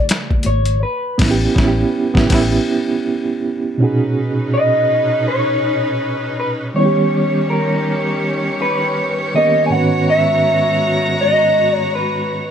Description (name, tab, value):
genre	R&B, neo-soul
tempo	81 BPM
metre	4/4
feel	swing 59% on 16ths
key	B major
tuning	A4 = 440 Hz
part	electric guitar through a small old amp	melody	0.0-12.5 s	A#4 to G#5	-17 LUFS	left 1 dB	plate reverb
part	reed electric piano	accompaniment	0.0-12.5 s	G#2 to C#5	-18 LUFS	right 3 dB	fast tremolo
part	boom bap sampler-style drum kit	drums	0.1-2.6 s	crash cymbal, finger snaps, hi-hat, kick drum, snare drum	-18 LUFS	equal	none
part	congas	percussion	0.3-0.7 s	none	-28 LUFS	left 4 dB	none
part	vintage muted fingered electric bass	bass	0.5-2.6 s	G#1 to A1	-18 LUFS	equal	none
part	warm studio string section	sustained chords	3.8-12.5 s	D#3 to A#5	-21 LUFS	equal	plate reverb
room	light reverb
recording	none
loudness	-14 LUFS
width	side -8 dB against mid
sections	0.0-3.8 A section; 3.8-12.5 B section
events	band accent 0.8-3.8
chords	0.0 Dmaj9 (rootless); 0.8 A9; 3.8 Bmaj9; 6.7 D#7b13; 9.7 G#m9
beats	0.08 | 0.82 1.56 2.30 3.04 | 3.79 4.53 5.27 6.01 | 6.75 7.49 8.23 8.97 | 9.71 10.45 11.19 11.93